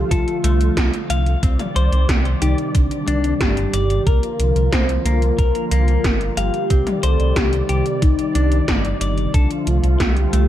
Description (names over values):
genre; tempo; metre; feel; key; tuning
synthwave; 91 BPM; 4/4; straight; C dorian; A4 = 438 Hz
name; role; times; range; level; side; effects
soft octave-layered synth lead; melody; 0.0-10.5 s; D4 to C5; -23 LUFS; left 1 dB; chorus, phaser, ping-pong delay
warm analog pad; sustained chords; 0.0-10.5 s; C3 to D5; -26 LUFS; equal; chorus, sidechain pumping
dark detuned saw bass; bass; 0.0-10.5 s; G1 to C2; -18 LUFS; equal; none
clean electric guitar; arpeggios; 0.1-10.5 s; A3 to F5; -27 LUFS; left 6 dB; digital delay
80s electronic pad drums; drums; 0.1-10.5 s; hi-hat, snare drum, toms; -24 LUFS; right 1 dB; gated reverb on snare and toms, gated reverb
electronic kick drum; drums; 0.1-10.1 s; none; -19 LUFS; equal; none
room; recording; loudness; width
little or no reverb; none; -16 LUFS; side -12 dB against mid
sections
0.0-10.5 A section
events
none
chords
0.0 Dm/C; 1.4 Cmadd9; 4.1 Bb/C; 6.7 Cmadd9; 9.3 Dm/C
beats
0.11 0.77 | 1.43 2.09 2.75 3.41 | 4.07 4.73 5.39 6.04 | 6.71 7.36 8.02 8.68 | 9.34 10.00